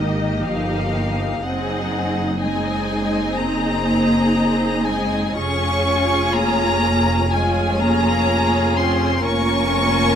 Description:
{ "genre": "classical, slow romantic movement for string orchestra", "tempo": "62 BPM", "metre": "4/4", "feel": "rubato", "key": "Ab major", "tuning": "A4 = 441 Hz", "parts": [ { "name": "rich chamber violin section", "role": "melody", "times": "0.0-10.2 s", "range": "Eb5 to Db6", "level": "-24 LUFS", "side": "left 2 dB", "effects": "none" }, { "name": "rich studio violin section", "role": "second line", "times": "0.0-10.2 s", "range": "G4 to Ab5", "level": "-24 LUFS", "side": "left 1 dB", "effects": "none" }, { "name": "rich symphonic viola section", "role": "accompaniment", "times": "0.0-10.2 s", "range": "Bb3 to F4", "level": "-23 LUFS", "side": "equal", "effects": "none" }, { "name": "rich symphonic cello section", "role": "bass", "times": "0.0-10.2 s", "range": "Eb3 to Db4", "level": "-23 LUFS", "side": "equal", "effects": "none" }, { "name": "rich symphonic double bass section", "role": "bass", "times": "0.0-10.2 s", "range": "F1 to Ab1", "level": "-24 LUFS", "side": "right 1 dB", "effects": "none" } ], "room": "moderate studio reverb, RT60 0.7 s", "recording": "none", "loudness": "-17 LUFS", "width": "side -8 dB against mid", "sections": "0.0-10.2 A section", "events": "none", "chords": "0.0 Eb/Ab; 1.4 Ab7/Gb; 5.4 Db/F; 9.3 Bbm7/F", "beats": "0.45 | 1.44 2.42 3.38 4.33 | 5.39 6.36 7.34 8.30 | 9.25" }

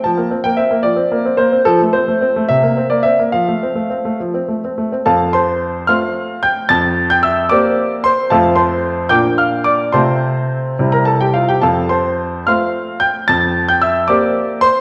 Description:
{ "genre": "classical-period piano sonatina", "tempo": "69-76 BPM (dotted quarters)", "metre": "6/8", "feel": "rubato", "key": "F major", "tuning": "A4 = 439 Hz", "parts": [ { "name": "clear grand piano", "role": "solo", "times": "0.0-14.8 s", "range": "F2 to A6", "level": "-15 LUFS", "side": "equal", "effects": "none" } ], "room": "wet recital hall reverb, RT60 1.5 s", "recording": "worn, warbling old tape, cassette tape, warbly pitch drift", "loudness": "-15 LUFS", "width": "mono", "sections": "0.0-5.1 A section; 5.1-14.8 B section", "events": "none", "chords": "0.0 Fmaj13; 1.7 F; 2.5 C7; 3.3 F; 6.7 C7/F; 8.3 F; 9.1 Bb; 9.9 F/C; 10.8 C; 11.6 F; 13.3 C7/F", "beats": "| 0.03 0.84 | 1.66 2.48 | 3.33 4.19 | 5.06 5.89 | 6.70 7.50 | 8.30 9.10 | 9.94 10.79 | 11.63 12.46 | 13.28 14.08" }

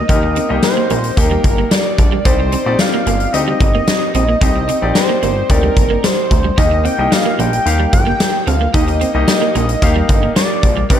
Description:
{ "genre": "1980s-style pop", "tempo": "111 BPM", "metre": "4/4", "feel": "straight", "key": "unclear", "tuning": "A4 = 439 Hz", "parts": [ { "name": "wide unison lead", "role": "melody", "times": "0.0-11.0 s", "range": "Bb4 to G5", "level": "-19 LUFS", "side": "equal", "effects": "none" }, { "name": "clear concert grand piano", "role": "accompaniment", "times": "0.0-11.0 s", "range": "Bb3 to G5", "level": "-21 LUFS", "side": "left 4 dB", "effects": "none" }, { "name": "electric guitar at the edge of break-up", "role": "riff", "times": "0.0-11.0 s", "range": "G3 to Eb4", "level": "-23 LUFS", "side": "right 8 dB", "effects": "ensemble chorus, ping-pong delay" }, { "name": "chorused synth bass", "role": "bass", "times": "0.0-11.0 s", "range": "G1 to Eb2", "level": "-18 LUFS", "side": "equal", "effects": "none" }, { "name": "huge arena drum kit", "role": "drums", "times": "0.1-11.0 s", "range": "hi-hat, kick drum, snare drum, tambourine", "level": "-15 LUFS", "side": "equal", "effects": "gated reverb" } ], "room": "studio reverb", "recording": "none", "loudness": "-12 LUFS", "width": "side -10 dB against mid", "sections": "0.0-11.0 A section", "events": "none", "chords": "0.0 Cmadd9", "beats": "| 0.09 0.63 1.17 1.71 | 2.25 2.79 3.34 3.88 | 4.42 4.96 5.50 6.04 | 6.58 7.12 7.66 8.20 | 8.74 9.28 9.82 10.36 | 10.90" }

